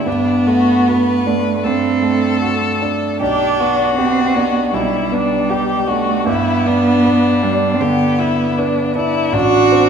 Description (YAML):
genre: classical, slow romantic movement for piano trio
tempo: 78 BPM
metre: 4/4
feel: rubato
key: G major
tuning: A4 = 437 Hz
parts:
  - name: rich violin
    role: melody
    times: 0.0-9.9 s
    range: D4 to B4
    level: -20 LUFS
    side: left 6 dB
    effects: none
  - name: rich cello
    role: second line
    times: 0.0-9.9 s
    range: G3 to F#4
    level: -16 LUFS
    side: right 3 dB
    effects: none
  - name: clear concert grand piano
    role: accompaniment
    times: 0.0-9.9 s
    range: A1 to B4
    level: -19 LUFS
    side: right 1 dB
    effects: none
room: wet concert hall reverb, RT60 1.9 s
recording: none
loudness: -13 LUFS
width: side -7 dB against mid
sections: 0.0-9.9 A section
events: none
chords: 0.1 D7/G; 3.2 G/B; 6.3 G; 9.3 D7/A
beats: | 0.07 0.88 1.64 2.42 | 3.21 3.98 4.73 5.51 | 6.27 7.05 7.81 8.59 | 9.34